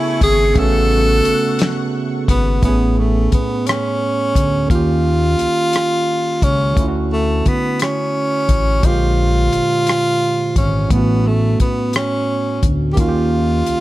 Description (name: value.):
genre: slow six-eight R&B.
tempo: 58 BPM (dotted quarters).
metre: 6/8.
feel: straight.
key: A major.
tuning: A4 = 440 Hz.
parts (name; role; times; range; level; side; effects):
breathy tenor saxophone; melody; 0.0-13.8 s; A3 to A4; -18 LUFS; equal; tape echo.
barky tine electric piano; accompaniment; 0.0-13.8 s; A2 to C5; -21 LUFS; right 4 dB; overdrive.
lush unison pad; sustained chords; 0.0-2.6 s; A3 to C#6; -28 LUFS; left 2 dB; chorus, phaser.
smooth synth bass; bass; 0.2-13.8 s; G#1 to D#2; -17 LUFS; left 1 dB; none.
warm soul drum kit; drums; 0.2-13.8 s; hi-hat, kick drum, rim click, snare drum; -17 LUFS; left 1 dB; none.
room: small room ambience.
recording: none.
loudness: -14 LUFS.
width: side -16 dB against mid.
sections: 0.0-2.6 A section; 2.6-13.8 B section.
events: none.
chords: 0.0 Amaj7; 2.6 Amaj9; 4.7 D#9; 6.8 Dmaj7; 8.8 Bb13; 10.9 A6; 13.0 D#9.